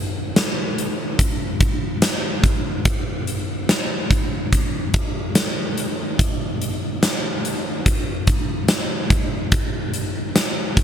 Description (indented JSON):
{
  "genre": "dream pop",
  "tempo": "72 BPM",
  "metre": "4/4",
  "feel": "straight",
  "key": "none",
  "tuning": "none",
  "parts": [
    { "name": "huge arena drum kit", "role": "drums", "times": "0.4-10.8 s", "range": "hi-hat, kick drum, snare drum", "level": "-19 LUFS", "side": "equal", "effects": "none" }
  ],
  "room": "light reverb",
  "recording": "none",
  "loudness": "-19 LUFS",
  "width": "side -9 dB against mid",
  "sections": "0.0-10.8 A section",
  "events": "none",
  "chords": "none",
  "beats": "0.36 1.19 2.02 | 2.86 3.69 4.52 5.36 | 6.19 7.02 7.86 8.69 | 9.52 10.36"
}